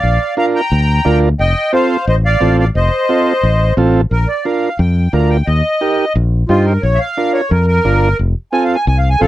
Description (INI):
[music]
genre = latin, cumbia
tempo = 176 BPM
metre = 4/4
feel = straight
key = Bb major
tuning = A4 = 440 Hz
[part]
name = accordion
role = melody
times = 0.0-9.3 s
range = F4 to Bb5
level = -16 LUFS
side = equal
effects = light tremolo tuning
[part]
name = fingered electric bass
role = bass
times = 0.0-9.3 s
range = F1 to G2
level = -13 LUFS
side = left 1 dB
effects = none
[part]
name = combo organ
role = accompaniment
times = 0.4-9.3 s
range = C4 to C5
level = -14 LUFS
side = right 3 dB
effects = none
[sound]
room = little or no reverb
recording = dry, close 1970s-style studio recording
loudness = -11 LUFS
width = side -14 dB against mid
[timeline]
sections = 0.0-4.1 A section; 4.1-9.3 B section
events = accordion solo 4.1-9.3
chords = 0.0 Bb; 1.4 F7; 4.1 Bb; 5.5 Eb; 6.8 Bb; 8.2 F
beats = | 0.03 0.37 0.71 1.05 | 1.39 1.73 2.08 2.42 | 2.75 3.10 3.44 3.77 | 4.12 4.46 4.79 5.13 | 5.47 5.82 6.16 6.50 | 6.83 7.17 7.51 7.85 | 8.19 8.53 8.87 9.21